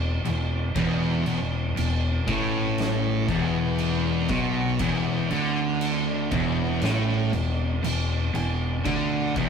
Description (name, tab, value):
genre	stoner and doom metal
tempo	59 BPM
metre	4/4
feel	straight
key	unclear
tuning	A4 = 441 Hz
part	crunchy overdriven guitar	riff	0.0-9.5 s	E2 to D3	-30 LUFS	right 1 dB	none
part	thick fuzz guitar	riff	0.0-9.5 s	E2 to D3	-28 LUFS	left 3 dB	distortion
part	thick fuzz guitar	riff	0.0-9.5 s	E2 to D3	-30 LUFS	right 5 dB	distortion
part	growling fingered electric bass	bass	0.0-9.5 s	E1 to D2	-29 LUFS	equal	overdrive, tube saturation
part	oversized low-tuned drum kit	drums	0.3-9.5 s	crash cymbal, kick drum, snare drum	-31 LUFS	right 1 dB	none
room	moderate small room reverb, RT60 0.5 s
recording	rough rehearsal-room recording, warm saturation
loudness	-22 LUFS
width	side -6 dB against mid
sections	0.0-9.5 A section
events	none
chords	0.0 E5